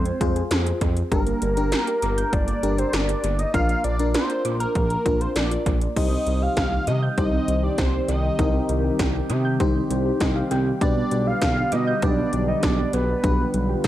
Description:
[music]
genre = synth-pop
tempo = 99 BPM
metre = 4/4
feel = straight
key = unclear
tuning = A4 = 440 Hz
[part]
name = fat analog lead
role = melody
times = 0.0-13.8 s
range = Bb4 to F5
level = -26 LUFS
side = equal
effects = analog delay
[part]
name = soft round pluck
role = arpeggios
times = 0.0-13.9 s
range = F3 to G6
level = -31 LUFS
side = right 4 dB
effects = chorus, analog delay
[part]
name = smooth gliding synth bass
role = bass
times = 0.0-13.9 s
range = G1 to C3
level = -24 LUFS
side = equal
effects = none
[part]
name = 80s electronic pad drums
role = drums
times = 0.1-13.9 s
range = crash cymbal, hi-hat, kick drum, snare drum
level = -25 LUFS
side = equal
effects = overdrive, analog delay
[part]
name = mellow FM electric piano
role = accompaniment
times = 0.2-13.9 s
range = D4 to G5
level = -28 LUFS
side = left 3 dB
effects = chorus, analog delay
[part]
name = warm analog pad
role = sustained chords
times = 6.0-13.9 s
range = D3 to G4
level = -29 LUFS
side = right 1 dB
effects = chorus
[sound]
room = moderate spring reverb, RT60 1.7 s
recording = echo-heavy mix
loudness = -20 LUFS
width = side -13 dB against mid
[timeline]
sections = 0.0-6.0 A section; 6.0-13.9 B section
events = FM electric piano fill 9.9-10.8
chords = 0.0 Fm; 1.1 Gm; 3.5 Bb; 6.0 Cm; 10.8 G/B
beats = 0.51 | 1.12 1.72 2.33 2.94 | 3.54 4.15 4.75 5.36 | 5.96 6.57 7.18 7.78 | 8.39 8.99 9.60 10.21 | 10.81 11.42 12.03 12.63 | 13.24 13.84

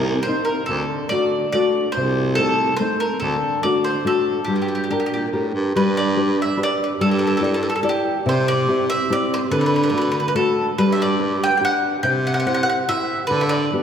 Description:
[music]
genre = italian folk, Italian serenade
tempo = 143 BPM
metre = 3/4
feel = straight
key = G minor, G major from 5.7 s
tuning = A4 = 439 Hz
[part]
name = bowl-back mandolin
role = melody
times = 0.0-13.8 s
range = G4 to G5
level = -22 LUFS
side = right 1 dB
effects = none
[part]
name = nylon-string guitar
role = accompaniment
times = 0.0-13.8 s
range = C3 to D5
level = -21 LUFS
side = left 2 dB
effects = none
[part]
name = edgy baritone saxophone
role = bass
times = 0.0-13.7 s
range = C2 to D3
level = -24 LUFS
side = right 1 dB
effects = none
[sound]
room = wet church reverb, RT60 3.2 s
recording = recorded in a church or concert hall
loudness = -17 LUFS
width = side -8 dB against mid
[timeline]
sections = 0.0-5.7 A section; 5.7-13.8 B section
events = none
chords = 0.0 Cm7; 0.7 D; 2.0 Adim/C; 3.2 D; 4.5 Gm; 5.7 G; 7.0 Em7/G; 8.3 C; 9.5 D; 10.8 G; 12.1 C; 13.3 G/D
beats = 0.27 | 0.69 1.12 1.54 | 1.96 2.38 2.81 | 3.23 3.64 4.06 | 4.48 4.90 5.32 | 5.75 6.17 6.59 | 7.01 7.43 7.85 | 8.26 8.68 9.10 | 9.52 9.94 10.36 | 10.79 11.21 11.63 | 12.05 12.47 12.89 | 13.31 13.73

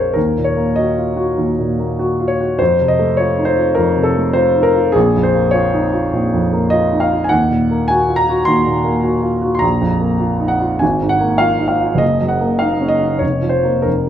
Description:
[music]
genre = classical, romantic character piece for solo piano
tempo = 101 BPM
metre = 4/4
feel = uneven beats, rubato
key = Bb minor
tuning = A4 = 440 Hz
[part]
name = warm grand piano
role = solo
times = 0.0-14.1 s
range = F1 to C6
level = -13 LUFS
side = equal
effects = none
[sound]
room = moderate large studio reverb, RT60 1.3 s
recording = close, detailed microphones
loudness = -13 LUFS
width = side -10 dB against mid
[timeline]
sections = 0.0-14.1 A section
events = none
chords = 0.2 Ebm; 2.6 F7; 5.0 Bbm; 7.3 Ebm; 9.6 Bb5; 10.8 Bb5/Ab; 12.0 Ebm/Gb; 13.2 Bbm/F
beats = | 0.16 0.78 1.39 2.00 | 2.60 3.19 3.78 4.37 | 4.96 5.54 6.13 6.72 | 7.31 7.90 8.48 9.05 | 9.63 10.20 10.81 11.41 | 12.02 12.62 13.22 13.86

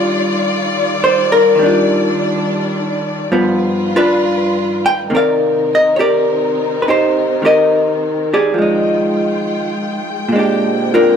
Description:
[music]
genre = jazz ballad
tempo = 69 BPM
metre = 4/4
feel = swing 68% on 8ths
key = Eb major, C minor from 5.1 s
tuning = A4 = 439 Hz
[part]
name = vintage hollow-body jazz guitar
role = accompaniment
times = 0.0-11.2 s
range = G2 to G5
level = -13 LUFS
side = equal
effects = none
[part]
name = warm studio string section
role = sustained chords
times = 0.0-11.2 s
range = D3 to G5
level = -20 LUFS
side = left 1 dB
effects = none
[sound]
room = moderate echo chamber reverb, RT60 1.8 s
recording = none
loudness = -12 LUFS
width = side -7 dB against mid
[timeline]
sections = 0.0-5.1 A section; 5.1-11.2 B section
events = none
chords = 0.0 Ebmaj9; 3.3 G7b13; 5.1 Cm9; 8.6 Fm9; 10.3 Bb13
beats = 0.71 | 1.58 2.45 3.33 4.21 | 5.08 5.96 6.83 7.70 | 8.57 9.44 10.31

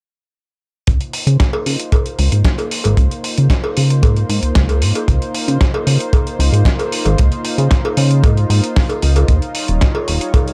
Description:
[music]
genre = nu-disco, nu disco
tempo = 114 BPM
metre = 4/4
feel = straight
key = unclear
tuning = A4 = 440 Hz
[part]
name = lush unison pad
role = sustained chords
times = 0.9-10.5 s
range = G3 to Db5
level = -27 LUFS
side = equal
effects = chorus, sidechain pumping
[part]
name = chorused synth bass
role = bass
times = 0.9-10.2 s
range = Eb1 to Db3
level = -16 LUFS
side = equal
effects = transformer saturation, sidechain pumping
[part]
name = dusty soul sampler-style drum kit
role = drums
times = 0.9-10.5 s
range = hi-hat, snare drum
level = -25 LUFS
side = equal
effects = none
[part]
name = kick drum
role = drums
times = 0.9-10.4 s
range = none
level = -16 LUFS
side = equal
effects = none
[part]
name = cowbell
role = percussion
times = 1.5-10.4 s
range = none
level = -26 LUFS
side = equal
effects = none
[sound]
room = little or no reverb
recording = dry, gritty hardware recording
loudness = -15 LUFS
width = mono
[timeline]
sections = 0.9-10.5 A section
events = none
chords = 0.9 Dbmaj13; 9.3 Eb9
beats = | 0.87 1.40 1.92 2.45 | 2.98 3.50 4.03 4.55 | 5.08 5.61 6.13 6.66 | 7.19 7.71 8.24 8.77 | 9.29 9.82 10.35

